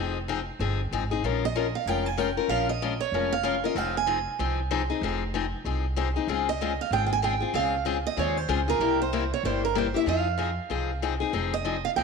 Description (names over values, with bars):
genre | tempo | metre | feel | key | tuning
acoustic string swing (jazz manouche) | 190 BPM | 4/4 | swing 59% on 8ths | F minor | A4 = 440 Hz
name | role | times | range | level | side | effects
picked steel-string acoustic guitar | melody | 0.0-12.0 s | Bb4 to Ab5 | -28 LUFS | right 11 dB | slapback echo
picked steel-string acoustic guitar | accompaniment | 0.0-12.0 s | C3 to Bb4 | -28 LUFS | left 10 dB | none
upright bass | bass | 0.0-12.0 s | F1 to F2 | -31 LUFS | right 1 dB | none
room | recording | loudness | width
moderate echo chamber reverb, RT60 1.8 s, studio ambience | 1960s-style stereo with parts hard left and right | -24 LUFS | side -5 dB against mid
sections
0.0-11.3 A section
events
none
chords
0.0 Fm7; 1.2 Bbm7; 3.8 Fm7; 6.3 Dbmaj7; 8.8 C7; 10.1 Fm7